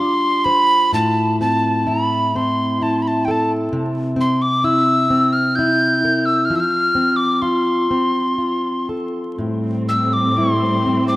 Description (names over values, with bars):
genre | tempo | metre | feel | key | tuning
celtic folk, Celtic slow air | 64 BPM | 3/4 | uneven beats, rubato | unclear | A4 = 438 Hz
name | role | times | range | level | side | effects
breathy tin whistle | melody | 0.0-11.2 s | G5 to G6 | -18 LUFS | equal | none
fingerpicked plugged-in steel-string acoustic guitar | accompaniment | 0.0-11.2 s | A2 to C5 | -19 LUFS | equal | none
dark symphonic string section | sustained chords | 9.4-11.2 s | A2 to C4 | -22 LUFS | right 1 dB | none
room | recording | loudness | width
moderate lush hall reverb, RT60 2.7 s | rough home demo mix, vinyl crackle | -15 LUFS | side -17 dB against mid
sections
0.0-11.2 A section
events
none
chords
0.0 G7sus4; 0.9 Am; 3.7 C7; 6.5 F; 9.4 Am7